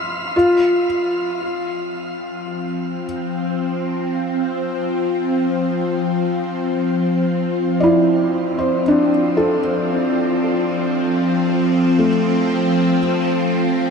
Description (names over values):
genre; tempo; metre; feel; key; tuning
ambient; free time; none; none; F major; A4 = 441 Hz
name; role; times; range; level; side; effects
felt-muted upright piano; arpeggios; 0.0-13.9 s; A3 to C6; -19 LUFS; equal; diffuse ambient delay
bowed-like drone; drone; 1.8-13.9 s; F3 to C4; -18 LUFS; left 1 dB; built-in reverb, phaser
room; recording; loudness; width
wet shimmer reverb, RT60 7.7 s; none; -16 LUFS; side -5 dB against mid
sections
0.3-13.9 A section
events
fade-out on felt piano 0.3-13.9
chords
0.3 Fmaj7; 13.0 F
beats
free time